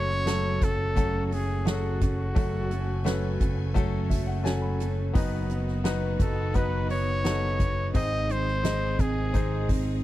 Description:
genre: piano-driven pop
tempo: 86 BPM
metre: 4/4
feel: straight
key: unclear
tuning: A4 = 440 Hz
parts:
  - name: clear trumpet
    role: melody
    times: 0.0-9.7 s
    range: F#4 to D#5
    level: -31 LUFS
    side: equal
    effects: none
  - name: clear concert grand piano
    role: accompaniment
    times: 0.0-10.0 s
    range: G#2 to B5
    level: -33 LUFS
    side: left 6 dB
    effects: none
  - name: bright studio string section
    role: sustained chords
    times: 0.0-10.0 s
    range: A2 to G#5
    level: -41 LUFS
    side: equal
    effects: none
  - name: picked steel-string acoustic guitar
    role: riff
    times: 0.0-10.0 s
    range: G#2 to B#4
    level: -34 LUFS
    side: right 6 dB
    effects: none
  - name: picked electric bass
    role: bass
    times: 0.0-10.0 s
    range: F#1 to G#1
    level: -29 LUFS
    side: equal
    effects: none
  - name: soft-mallet drum kit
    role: drums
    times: 0.1-9.9 s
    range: hi-hat, kick drum, snare drum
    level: -28 LUFS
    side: equal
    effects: none
room: little or no reverb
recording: dry, close 1970s-style studio recording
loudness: -24 LUFS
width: side -15 dB against mid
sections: 0.0-10.0 A section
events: grand piano fill 3.8-5.2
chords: 0.0 F#m; 5.2 B/F#; 7.9 G#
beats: 0.27 0.97 1.67 | 2.36 3.06 3.76 4.46 | 5.16 5.85 6.55 7.25 | 7.95 8.64 9.34

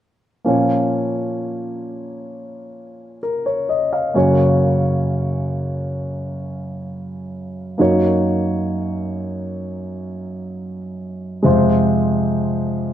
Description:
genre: pop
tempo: 65 BPM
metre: 4/4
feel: straight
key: Bb minor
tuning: A4 = 440 Hz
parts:
  - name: warm grand piano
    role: accompaniment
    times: 0.4-12.9 s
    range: F2 to F5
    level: -18 LUFS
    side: equal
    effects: none
room: wet stone room reverb, RT60 1.2 s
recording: band playing live in one room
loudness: -17 LUFS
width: side -11 dB against mid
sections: 0.5-12.9 A section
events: none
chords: 0.5 Bbm; 4.1 Gb; 7.8 Ebm7/Gb; 11.5 Fm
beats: | 0.46 1.38 2.31 3.23 | 4.15 5.07 5.98 6.89 | 7.80 8.71 9.62 10.54 | 11.45 12.37

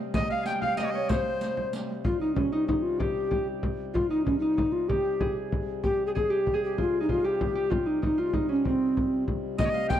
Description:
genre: medieval dance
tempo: 127 BPM (dotted quarters)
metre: 6/8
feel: straight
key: C phrygian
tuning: A4 = 440 Hz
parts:
  - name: Celtic harp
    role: second line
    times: 0.0-10.0 s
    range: C4 to Ab5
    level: -35 LUFS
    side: right 4 dB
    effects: none
  - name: pedal harmonium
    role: drone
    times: 0.0-10.0 s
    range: C3 to G3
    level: -36 LUFS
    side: left 4 dB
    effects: stereo widening
  - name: edgy shawm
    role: second line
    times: 0.1-1.7, 9.6-10.0 s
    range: C5 to G5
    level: -36 LUFS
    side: left 6 dB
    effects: none
  - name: frame drum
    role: percussion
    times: 0.1-10.0 s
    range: none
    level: -30 LUFS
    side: left 1 dB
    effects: none
  - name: riq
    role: percussion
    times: 0.1-1.9, 9.6-10.0 s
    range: none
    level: -35 LUFS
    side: right 3 dB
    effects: none
  - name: mellow hollow tenor recorder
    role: melody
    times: 0.2-10.0 s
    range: C4 to G5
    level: -27 LUFS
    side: equal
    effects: slapback echo
room: little or no reverb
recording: dry, close 1970s-style studio recording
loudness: -25 LUFS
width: side -10 dB against mid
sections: 0.0-2.0 A section; 2.0-9.6 B section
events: none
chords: none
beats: | 0.14 0.62 | 1.10 1.57 | 2.05 2.52 | 3.00 3.47 | 3.95 4.42 | 4.89 5.36 | 5.83 6.31 | 6.78 7.25 | 7.71 8.18 | 8.65 9.12 | 9.58

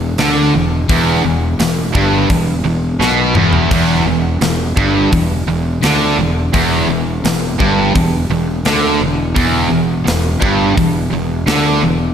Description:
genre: heavy metal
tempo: 85 BPM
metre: 4/4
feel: straight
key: E minor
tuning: A4 = 439 Hz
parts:
  - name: distorted electric guitar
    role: riff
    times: 0.0-12.1 s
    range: E2 to D3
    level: -19 LUFS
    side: equal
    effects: overdrive
  - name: high-gain distorted guitar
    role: riff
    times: 0.0-12.1 s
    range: E2 to D3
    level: -18 LUFS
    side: right 6 dB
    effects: distortion, slapback echo
  - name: sludgy distorted guitar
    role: riff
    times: 0.0-12.1 s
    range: E2 to D3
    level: -18 LUFS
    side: left 6 dB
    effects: overdrive
  - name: fuzz fingered electric bass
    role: bass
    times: 0.0-12.1 s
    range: E1 to D2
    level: -19 LUFS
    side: equal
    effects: overdrive
  - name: tight metal drum kit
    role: drums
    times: 0.2-11.6 s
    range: crash cymbal, hi-hat, kick drum, snare drum, toms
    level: -19 LUFS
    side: equal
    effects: none
room: wet recital hall reverb, RT60 1.7 s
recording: big arena sound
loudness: -12 LUFS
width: side -8 dB against mid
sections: 0.0-12.1 A section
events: drum fill 3.0-3.7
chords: 0.0 Em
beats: 0.18 | 0.89 1.59 2.30 3.01 | 3.71 4.42 5.13 5.83 | 6.54 7.25 7.95 8.66 | 9.37 10.07 10.78 11.48

